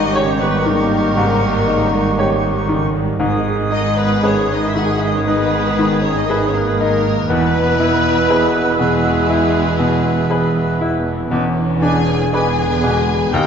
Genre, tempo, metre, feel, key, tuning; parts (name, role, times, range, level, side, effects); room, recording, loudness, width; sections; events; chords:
classical; 59 BPM; 4/4; rubato; A4 = 438 Hz
bright baby grand piano; melody; 0.0-13.5 s; D#2 to C#5; -20 LUFS; left 3 dB
warm symphonic violin section; melody; 0.0-13.5 s; G#4 to G#5; -25 LUFS; left 5 dB
bright small flute group; second line; 0.0-13.4 s; C#6 to E6; -26 LUFS; right 2 dB
mellow clarinet; second line; 0.0-13.5 s; G#4 to G#5; -26 LUFS; equal
warm oboe; second line; 0.0-13.5 s; G4 to B4; -27 LUFS; right 3 dB
warm symphonic violin section; second line; 0.0-13.5 s; G#3 to G#4; -28 LUFS; left 2 dB
warm bassoon; accompaniment; 0.0-13.5 s; B2 to D#3; -26 LUFS; right 2 dB
warm symphonic viola section; accompaniment; 0.0-13.5 s; C#3 to D#4; -24 LUFS; right 2 dB
dark French horn section; sustained chords; 0.0-13.5 s; G#3 to G#4; -25 LUFS; left 3 dB
warm trombone section; sustained chords; 0.0-13.5 s; D3 to B3; -24 LUFS; right 2 dB
rich symphonic cello section; bass; 0.0-13.5 s; D#2 to G#2; -23 LUFS; right 4 dB
rich symphonic double bass section; bass; 0.0-13.5 s; E1 to D#2; -24 LUFS; right 4 dB
timpani; percussion; 3.2-4.7 s; G#2; -29 LUFS; right 1 dB
wet scoring stage reverb, RT60 1.6 s; nothing above 7.7 kHz; -14 LUFS; side -7 dB against mid
0.0-13.5 A section
0.0 D#7/G#; 3.2 G#m; 7.3 E; 11.3 E7